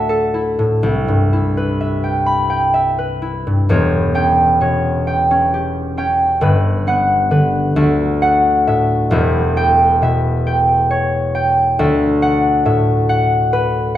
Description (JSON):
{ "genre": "classical, solo harp piece", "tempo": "41-46 BPM (dotted quarters)", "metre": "6/8", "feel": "rubato", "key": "E minor", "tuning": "A4 = 440 Hz", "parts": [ { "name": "concert harp", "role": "solo", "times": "0.0-14.0 s", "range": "E1 to B5", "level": "-13 LUFS", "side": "equal", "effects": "none" } ], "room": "wet recital hall reverb, RT60 1.4 s", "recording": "recorded in a church or concert hall", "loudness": "-13 LUFS", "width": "side -12 dB against mid", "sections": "0.0-3.7 A section; 3.7-14.0 B section", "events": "none", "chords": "0.0 Dadd9; 0.8 Cmaj7; 3.7 Em6; 6.4 Gmaj7; 7.8 Dadd9; 9.1 Em6; 11.8 D69", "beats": "| 0.83 2.27 | 3.69 5.07 | 6.43 7.77 | 9.13 10.47 | 11.79 13.10" }